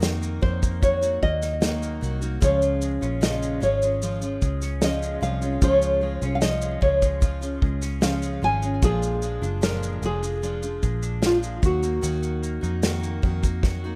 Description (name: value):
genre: acoustic pop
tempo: 75 BPM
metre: 4/4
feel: straight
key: Db major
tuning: A4 = 439 Hz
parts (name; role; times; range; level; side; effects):
- nylon-string guitar; melody; 0.0-14.0 s; F4 to Ab5; -28 LUFS; equal; none
- picked steel-string acoustic guitar; accompaniment; 0.0-14.0 s; Bb2 to Gb4; -33 LUFS; equal; none
- twelve-string electric guitar; arpeggios; 0.0-14.0 s; F3 to Eb4; -43 LUFS; equal; none
- vintage muted fingered electric bass; bass; 0.0-14.0 s; F1 to F2; -30 LUFS; equal; none
- natural country drum kit; drums; 0.0-13.8 s; kick drum, shaker, snare drum; -26 LUFS; equal; none
room: small room ambience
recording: rough home demo mix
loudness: -24 LUFS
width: mono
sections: 0.0-14.0 A section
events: drum fill 13.6-14.0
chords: 0.0 Ebm; 2.4 Db; 8.8 Bb7; 11.6 Ebm